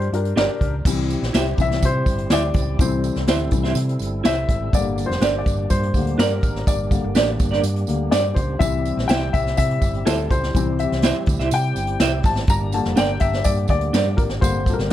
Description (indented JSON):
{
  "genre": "uptempo 1960s-style soul",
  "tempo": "124 BPM",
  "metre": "4/4",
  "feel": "straight",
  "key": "C mixolydian",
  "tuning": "A4 = 441 Hz",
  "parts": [
    { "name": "warm upright piano", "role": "accompaniment", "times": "0.0-14.9 s", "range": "D3 to Bb5", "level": "-24 LUFS", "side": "left 5 dB", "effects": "none" },
    { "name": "hollow-body short-scale fingered electric bass", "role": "bass", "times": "0.0-14.9 s", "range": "F1 to C3", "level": "-24 LUFS", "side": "equal", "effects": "none" },
    { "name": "vintage brush drum kit", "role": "drums", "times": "0.0-14.9 s", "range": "crash cymbal, hi-hat, kick drum, snare drum", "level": "-22 LUFS", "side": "equal", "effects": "none" },
    { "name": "semi-hollow electric guitar", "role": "stabs", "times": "0.4-14.9 s", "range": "D4 to E5", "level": "-25 LUFS", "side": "right 5 dB", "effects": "tremolo" },
    { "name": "percussive tonewheel organ", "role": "sustained chords", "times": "0.9-14.9 s", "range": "G3 to A4", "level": "-30 LUFS", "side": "right 2 dB", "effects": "slow rotary speaker, overdrive, chorus vibrato" },
    { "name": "tambourine", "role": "percussion", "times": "0.9-14.8 s", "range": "none", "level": "-36 LUFS", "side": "right 19 dB", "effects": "none" }
  ],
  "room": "light reverb, small room ambience",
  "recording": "dark, warm production",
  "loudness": "-18 LUFS",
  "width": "side -12 dB against mid",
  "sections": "0.9-14.9 A section",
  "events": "upright piano solo 0.9-14.9",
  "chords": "0.0 Gm; 0.9 C; 4.7 Gm; 8.6 C; 12.5 Gm"
}